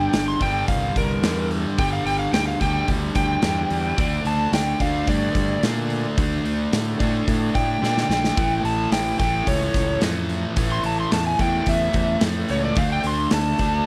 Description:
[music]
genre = blues rock power trio and southern rock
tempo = 109 BPM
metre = 4/4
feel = straight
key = D minor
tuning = A4 = 444 Hz
[part]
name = overdriven slide guitar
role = melody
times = 0.0-13.9 s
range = Bb4 to C6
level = -27 LUFS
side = equal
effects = none
[part]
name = overdriven electric guitar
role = riff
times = 0.0-13.9 s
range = G2 to D4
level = -27 LUFS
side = equal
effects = none
[part]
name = fuzz fingered electric bass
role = bass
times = 0.0-13.8 s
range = G1 to Bb2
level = -28 LUFS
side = equal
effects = overdrive
[part]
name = big rock drum kit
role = drums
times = 0.1-13.7 s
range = hi-hat, kick drum, snare drum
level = -27 LUFS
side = equal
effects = none
[sound]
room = light reverb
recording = none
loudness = -22 LUFS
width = mono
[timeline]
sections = 0.0-13.9 A section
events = electric slide guitar solo 0.0-13.9; drum fill 7.8-8.4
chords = 0.0 G5; 4.0 D5; 8.4 A; 12.8 D7(no3)

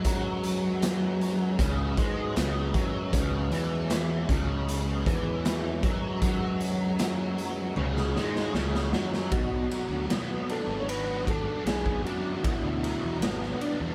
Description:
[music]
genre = psychedelic rock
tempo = 78 BPM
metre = 4/4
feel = straight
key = B dorian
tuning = A4 = 440 Hz
[part]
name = tonewheel organ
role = sustained chords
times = 0.0-13.9 s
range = C#3 to B5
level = -44 LUFS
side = equal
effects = none
[part]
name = overdriven electric guitar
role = riff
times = 0.0-13.9 s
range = B2 to F#4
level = -34 LUFS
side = equal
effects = rotary speaker
[part]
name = fuzz picked electric bass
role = bass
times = 0.0-13.9 s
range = G#1 to B2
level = -34 LUFS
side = equal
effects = overdrive
[part]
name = hand-pumped harmonium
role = drone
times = 0.0-9.4 s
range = B2 to F#3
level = -42 LUFS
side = equal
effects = none
[part]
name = raw garage drum kit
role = drums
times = 0.0-13.8 s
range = hi-hat, kick drum, ride cymbal, snare drum, toms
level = -33 LUFS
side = equal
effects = none
[part]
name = combo organ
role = melody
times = 9.3-13.8 s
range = D4 to C#5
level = -35 LUFS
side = equal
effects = none
[sound]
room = light reverb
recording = band playing live in one room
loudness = -28 LUFS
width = mono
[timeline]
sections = 0.0-9.3 A section; 9.3-13.9 B section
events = drum fill 7.8-9.3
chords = 0.0 C#5; 9.3 Bmadd9

